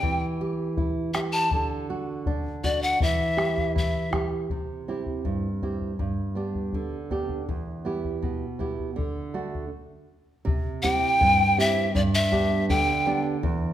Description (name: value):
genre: andean folk, Andean ensemble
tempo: 81 BPM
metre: 2/4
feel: straight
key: unclear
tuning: A4 = 440 Hz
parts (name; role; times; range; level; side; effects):
- breathy polished pan flute; melody; 0.0-4.3, 10.8-13.2 s; D5 to A5; -23 LUFS; left 1 dB; none
- nylon-string guitar; accompaniment; 0.0-13.7 s; E2 to G4; -27 LUFS; right 2 dB; none
- bombo; percussion; 0.0-13.6 s; none; -30 LUFS; left 2 dB; none
room: wet recital hall reverb, RT60 1.3 s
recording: none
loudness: -23 LUFS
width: side -11 dB against mid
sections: 0.0-4.5 A section; 4.5-10.5 B section; 10.5-13.7 C section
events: stop 9.7-10.5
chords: 0.0 Em; 1.5 D; 3.0 Em; 4.5 C; 6.0 G; 7.5 Em; 9.0 D; 10.5 C; 11.9 G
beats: | 0.04 0.78 | 1.52 2.27 | 3.01 3.75 | 4.50 5.25 | 5.99 6.74 | 7.48 8.23 | 8.97 9.72 | 10.46 11.20 | 11.95 12.69 | 13.42